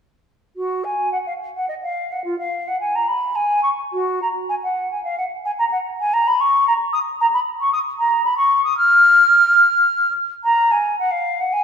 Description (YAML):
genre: classical, baroque-style fantasia for unaccompanied flute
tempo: 100-114 BPM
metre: 3/4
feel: rubato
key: F# major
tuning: A4 = 440 Hz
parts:
  - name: mellow hollow concert flute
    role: solo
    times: 0.6-11.6 s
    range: E#4 to F6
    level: -16 LUFS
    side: equal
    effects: none
room: moderate concert hall reverb, RT60 1.9 s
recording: minimal, uncompressed stereo recording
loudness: -16 LUFS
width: side -7 dB against mid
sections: 0.6-11.6 A section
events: none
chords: none